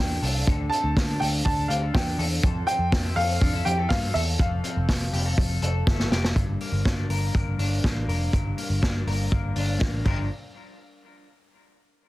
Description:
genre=jangly indie pop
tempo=122 BPM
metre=4/4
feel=straight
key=G dorian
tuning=A4 = 438 Hz
part: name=warm upright piano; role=melody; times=0.0-6.1 s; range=E5 to A5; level=-28 LUFS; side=equal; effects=none
part: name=electric guitar through a small old amp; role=arpeggios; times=0.0-10.3 s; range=G2 to Bb4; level=-32 LUFS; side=left 3 dB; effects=wide subtle chorus, tape echo
part: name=vintage muted picked electric bass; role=bass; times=0.0-10.3 s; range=F1 to G2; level=-26 LUFS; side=equal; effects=none
part: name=vintage drum kit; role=drums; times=0.2-10.2 s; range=crash cymbal, hi-hat, kick drum, snare drum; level=-25 LUFS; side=equal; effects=none
room=little or no reverb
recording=dense, heavily limited modern master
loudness=-22 LUFS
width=side -17 dB against mid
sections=0.0-6.4 A section; 6.4-10.3 B section; 10.3-12.1 C section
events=drum fill 5.9-6.4, 9.8-10.3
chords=0.0 D5; 2.4 Fmaj7; 6.4 Gm; 10.3 N.C.

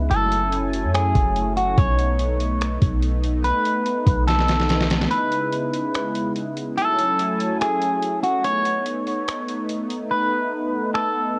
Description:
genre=hip hop, atmospheric cloud-rap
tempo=144 BPM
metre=4/4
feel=half-time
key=unclear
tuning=A4 = 439 Hz
part: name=warm analog pad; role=sustained chords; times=0.0-11.4 s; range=C#3 to G#5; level=-28 LUFS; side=equal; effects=chorus, sidechain pumping, cassette tape
part: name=clean 808-style bass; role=bass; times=0.0-5.1 s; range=F#1 to F#2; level=-25 LUFS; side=equal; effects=none
part: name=electric guitar at the edge of break-up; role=melody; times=0.1-11.4 s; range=F#4 to C#5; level=-25 LUFS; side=equal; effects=low-pass filter, cassette tape, analog delay
part: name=lo-fi sampler-style drum kit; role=drums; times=0.1-11.0 s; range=finger snaps, hi-hat, kick drum, snare drum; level=-26 LUFS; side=equal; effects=cassette tape
room=digital ambience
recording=home recording on cassette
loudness=-22 LUFS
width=mono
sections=0.0-11.4 A section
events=drum fill 4.3-5.1; break 5.1-11.4; hi-hats muted 10.1-11.4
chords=0.1 F#m7; 1.8 B7; 5.1 C#m7; 6.8 F#m7; 8.4 B7

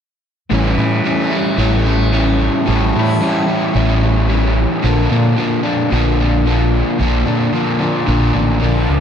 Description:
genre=rock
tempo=111 BPM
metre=4/4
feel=straight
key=A phrygian dominant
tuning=A4 = 440 Hz
part: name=crunchy overdriven guitar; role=riff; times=0.5-9.0 s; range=A2 to E4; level=-15 LUFS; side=equal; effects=harmonic tremolo
part: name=growling picked electric bass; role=bass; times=0.5-9.0 s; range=A1 to Bb2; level=-16 LUFS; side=equal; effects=overdrive
part: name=tanpura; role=drone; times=0.5-9.0 s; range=A2 to E4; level=-24 LUFS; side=equal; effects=none
room=light reverb, studio reverb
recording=none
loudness=-13 LUFS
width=side -8 dB against mid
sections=0.5-9.0 A section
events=none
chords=0.5 A7; 4.8 Bb

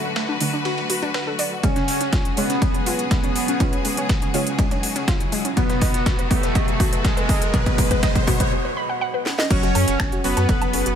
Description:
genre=melodic techno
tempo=122 BPM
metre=4/4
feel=straight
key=F# minor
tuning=A4 = 440 Hz
part: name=soft supersaw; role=melody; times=0.0-10.9 s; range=G#3 to C#4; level=-27 LUFS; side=right 1 dB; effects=sidechain pumping, low-pass filter, dub echo
part: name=clear studio string section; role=sustained chords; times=0.0-11.0 s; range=B2 to F#5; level=-30 LUFS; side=left 2 dB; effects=sidechain pumping
part: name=synth brass stab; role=stabs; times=0.0-11.0 s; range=B2 to F#4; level=-28 LUFS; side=right 1 dB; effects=chorus, sidechain pumping, digital delay
part: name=warbly dusty pluck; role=arpeggios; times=0.2-11.0 s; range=G#3 to B5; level=-27 LUFS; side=left 1 dB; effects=chorus, sidechain pumping, digital delay
part: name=dusty soul sampler-style drum kit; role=drums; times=0.2-10.9 s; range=ride cymbal, snare drum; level=-34 LUFS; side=right 2 dB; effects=high-pass filter on cymbals, high-pass filter on snare
part: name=techno drum kit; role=drums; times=0.4-11.0 s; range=crash cymbal, finger snaps, hi-hat, snare drum, woodblock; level=-27 LUFS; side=equal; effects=overdrive
part: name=electronic kick drum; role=drums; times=1.6-10.6 s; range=none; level=-20 LUFS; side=equal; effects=overdrive
part: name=riser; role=sound effects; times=4.7-8.5 s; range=none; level=-31 LUFS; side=right 1 dB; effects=none
part: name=big bright polysynth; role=second line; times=9.5-10.9 s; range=B4 to C#5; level=-29 LUFS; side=left 2 dB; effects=sidechain pumping, digital delay
part: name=round analog bass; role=bass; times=9.5-11.0 s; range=F#1 to F#2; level=-23 LUFS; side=equal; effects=tube saturation, sidechain pumping
room=light reverb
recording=none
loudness=-18 LUFS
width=side -8 dB against mid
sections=0.0-9.5 A section; 9.5-11.0 B section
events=build-up 0.0-9.5; filter sweep on supersaw synth 0.0-9.5; filter sweep on synth stab 0.0-9.5; drum fill 1.6-8.5, 9.3; riser 4.7-8.5; break 8.5-9.5; drop 9.5-11.0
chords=0.0 D; 1.6 C#sus4; 5.6 B; 9.5 F#madd9

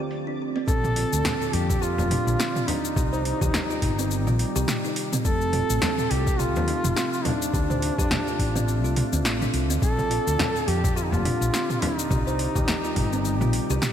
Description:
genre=organic downtempo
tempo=105 BPM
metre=4/4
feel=swing 57% on 16ths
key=unclear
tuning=A4 = 440 Hz
part: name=warbly tape-like pad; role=sustained chords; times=0.0-13.9 s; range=Bb2 to D5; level=-32 LUFS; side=right 1 dB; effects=chorus, built-in reverb, sidechain pumping
part: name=kalimba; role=arpeggios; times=0.0-13.9 s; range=C4 to C5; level=-30 LUFS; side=right 2 dB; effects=ping-pong delay
part: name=woody fretless electric bass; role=bass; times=0.0-13.8 s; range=F1 to F2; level=-26 LUFS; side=left 1 dB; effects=sidechain pumping
part: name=twinkling granular texture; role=texture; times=0.0-0.7 s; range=D5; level=-44 LUFS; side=right 2 dB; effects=built-in reverb, ensemble chorus
part: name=deep house drum kit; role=drums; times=0.1-13.9 s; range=cabasa, hi-hat, snare drum, toms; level=-28 LUFS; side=equal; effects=overdrive, low-pass filter on hats, low-pass filter on perc, low-pass filter on toms, low-pass filter on snare
part: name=mellow duduk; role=melody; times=0.7-13.9 s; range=D4 to A4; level=-28 LUFS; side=equal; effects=ping-pong delay
part: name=electronic kick drum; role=drums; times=0.7-13.1 s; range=none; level=-26 LUFS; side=left 1 dB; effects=overdrive
part: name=frame drum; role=percussion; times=1.3-12.8 s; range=none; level=-32 LUFS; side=left 2 dB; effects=none
room=light reverb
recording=bright 1980s-style digital production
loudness=-22 LUFS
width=side -9 dB against mid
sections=0.7-13.9 A section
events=none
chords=0.0 Dm7; 0.7 Bb; 3.0 Cmadd9; 5.3 Fadd9; 7.5 Dm7; 9.8 Bb; 12.1 Cmadd9

